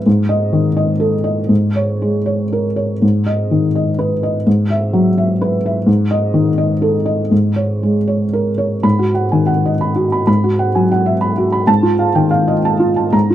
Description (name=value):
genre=neoclassical minimalist piano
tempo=116-131 BPM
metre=3/4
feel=rubato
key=G# minor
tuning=A4 = 442 Hz
part: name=felt-muted upright piano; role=solo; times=0.0-13.3 s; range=G#2 to B5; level=-13 LUFS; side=equal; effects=none
room=small room reverb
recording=dry, close 1970s-style studio recording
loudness=-13 LUFS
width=side -12 dB against mid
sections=0.0-8.8 A section; 8.8-13.3 A section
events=none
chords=0.1 G#5; 1.5 A#m7/G#; 3.0 G#m; 4.5 Esus2/G#; 5.9 G#5; 7.3 A#m7/G#; 8.8 G#m7; 10.3 Esus2/G#; 11.7 F7/G#